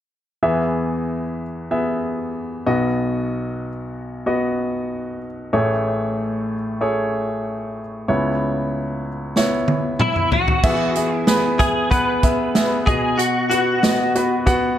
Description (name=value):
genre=piano-driven pop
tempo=94 BPM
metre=4/4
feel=straight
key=E major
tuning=A4 = 442 Hz
part: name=clear baby grand piano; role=accompaniment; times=0.4-14.8 s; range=A1 to F#5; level=-20 LUFS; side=equal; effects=none
part: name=natural country drum kit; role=drums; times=9.4-14.6 s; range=crash cymbal, hi-hat, kick drum, snare drum, toms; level=-20 LUFS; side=right 1 dB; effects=none
part: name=direct-recorded clean electric guitar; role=melody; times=10.0-14.8 s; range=E4 to B4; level=-20 LUFS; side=left 1 dB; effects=ensemble chorus
room=light reverb, studio reverb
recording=none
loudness=-18 LUFS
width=side -10 dB against mid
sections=0.4-10.6 A section; 10.6-14.8 B section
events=drum fill 9.4-10.6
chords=0.4 E; 2.7 B; 5.5 Amaj7; 8.1 C#m7; 10.6 E; 12.9 B